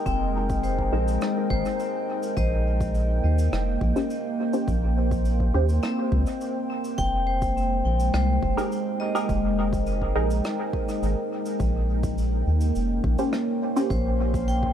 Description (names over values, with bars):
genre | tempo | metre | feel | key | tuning
ambient dub | 104 BPM | 4/4 | straight | Bb dorian | A4 = 440 Hz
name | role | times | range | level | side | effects
deep dark ambient pad | sustained chords | 0.0-14.7 s | Ab3 to C6 | -28 LUFS | equal | chorus, built-in reverb
vibraphone with hard mallets | arpeggios | 0.0-14.7 s | C4 to G5 | -31 LUFS | left 2 dB | dub echo
filtered dub chord stab | stabs | 0.0-13.9 s | Db4 to C5 | -30 LUFS | right 1 dB | phaser, wide subtle chorus, cassette tape, dub echo
round analog bass | bass | 0.1-14.7 s | F1 to Eb2 | -24 LUFS | equal | none
cabasa and rim click | drums | 0.1-14.6 s | none | -39 LUFS | right 1 dB | dub echo
electronic kick drum | drums | 0.1-14.7 s | none | -30 LUFS | equal | overdrive
room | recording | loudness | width
light reverb, small room ambience | none | -22 LUFS | side -10 dB against mid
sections
0.0-11.6 A section; 11.6-14.7 B section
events
none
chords
0.0 Fm11; 2.4 Bbsus2; 7.0 Fm11; 11.6 Bbm69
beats
| 0.06 0.64 1.22 1.79 | 2.37 2.95 3.52 4.10 | 4.68 5.25 5.83 6.41 | 6.98 7.56 8.14 8.71 | 9.29 9.87 10.45 11.02 | 11.60 12.18 12.75 13.33 | 13.91 14.48